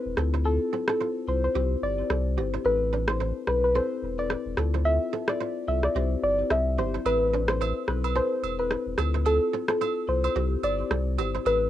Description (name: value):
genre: afrobeats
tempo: 109 BPM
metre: 4/4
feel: swing 58% on 16ths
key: A minor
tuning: A4 = 436 Hz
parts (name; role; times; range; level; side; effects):
- warm sub bass; bass; 0.1-11.7 s; E1 to D2; -28 LUFS; equal; none
- marimba with medium mallets; accompaniment; 0.2-11.7 s; C4 to C5; -32 LUFS; left 10 dB; cassette tape
- kora; riff; 0.2-11.4 s; B3 to C5; -36 LUFS; right 10 dB; cassette tape, tape echo
- electronic rim click; drums; 0.2-11.1 s; none; -27 LUFS; equal; cassette tape
- soft round pluck; melody; 0.5-11.6 s; A4 to E5; -27 LUFS; equal; chorus, cassette tape, tape echo
- agogo bells; percussion; 7.1-11.6 s; none; -36 LUFS; right 15 dB; none
room: light reverb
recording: home recording on cassette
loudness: -24 LUFS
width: side -12 dB against mid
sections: 0.0-11.7 A section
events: none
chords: 0.2 Dm7; 1.5 C; 2.6 Amadd9; 4.6 Dm7; 6.0 C; 7.1 Amadd9; 9.0 Dm7; 10.4 C